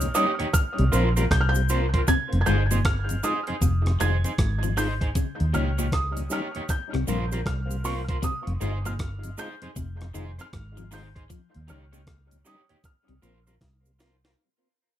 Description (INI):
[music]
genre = roots reggae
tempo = 78 BPM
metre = 4/4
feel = swing 63% on 16ths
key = F minor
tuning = A4 = 440 Hz
[part]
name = felt-muted upright piano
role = melody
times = 0.0-14.0 s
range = Db6 to Ab6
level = -30 LUFS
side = right 2 dB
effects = tape echo
[part]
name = mellow tonewheel organ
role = accompaniment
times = 0.0-14.1 s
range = Eb2 to F4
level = -33 LUFS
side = left 2 dB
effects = overdrive, chorus vibrato, slow rotary speaker, tape echo
[part]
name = vintage muted fingered electric bass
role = bass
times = 0.0-14.3 s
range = F1 to Eb2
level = -25 LUFS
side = equal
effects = none
[part]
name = breakbeat sampler-style drum kit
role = drums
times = 0.0-14.4 s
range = hi-hat, kick drum, rim click, snare drum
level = -26 LUFS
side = equal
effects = none
[part]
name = cabasa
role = percussion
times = 0.0-14.2 s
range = none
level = -36 LUFS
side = right 5 dB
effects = none
[part]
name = electric guitar at the edge of break-up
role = accompaniment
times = 0.1-14.3 s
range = Eb4 to Db5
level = -32 LUFS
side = right 1 dB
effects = tape echo
[part]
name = electric guitar at the edge of break-up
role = arpeggios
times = 2.1-13.4 s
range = G2 to F3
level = -32 LUFS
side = left 5 dB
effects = wide subtle chorus
[sound]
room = light reverb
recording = none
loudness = -22 LUFS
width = side -11 dB against mid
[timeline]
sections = 0.0-14.4 A section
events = fade-out 0.0-14.4; drum fill 13.6-14.4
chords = 0.0 Eb7; 0.5 C7sus4; 2.1 Fm7; 5.2 Eb7; 6.7 C7sus4; 8.2 Fm7; 11.3 Eb7; 12.8 C7sus4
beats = 0.54 1.31 | 2.08 2.85 3.62 4.38 | 5.15 5.92 6.69 7.46 | 8.23 9.00 9.77 10.53 | 11.30 12.07 12.84 13.61